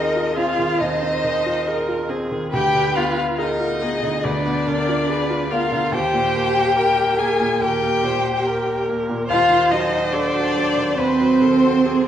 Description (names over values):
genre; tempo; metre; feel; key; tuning
classical, slow romantic movement for piano quintet; 70 BPM; 4/4; rubato; Eb major; A4 = 439 Hz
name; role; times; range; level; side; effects
clear violin; melody; 0.0-12.1 s; C5 to Ab5; -24 LUFS; left 6 dB; none
rich cello; second line; 0.0-12.1 s; C4 to Ab4; -21 LUFS; right 3 dB; none
rich violin; second line; 0.0-12.1 s; C5 to Ab5; -26 LUFS; left 4 dB; none
bright baby grand piano; accompaniment; 0.0-12.1 s; D2 to Bb4; -25 LUFS; equal; none
clear viola; accompaniment; 0.0-12.1 s; Ab4 to C5; -26 LUFS; right 1 dB; none
room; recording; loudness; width
wet scoring stage reverb, RT60 1.5 s; worn, warbling old tape, cassette tape, warbly pitch drift; -17 LUFS; side -10 dB against mid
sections
0.0-12.1 A section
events
none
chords
0.0 Fm7/Eb; 2.5 Ddim7; 5.9 Eb; 9.3 Ebdim7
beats
0.80 1.66 | 2.52 3.39 4.24 5.09 | 5.94 6.77 7.61 8.46 | 9.30 10.13 10.99 11.86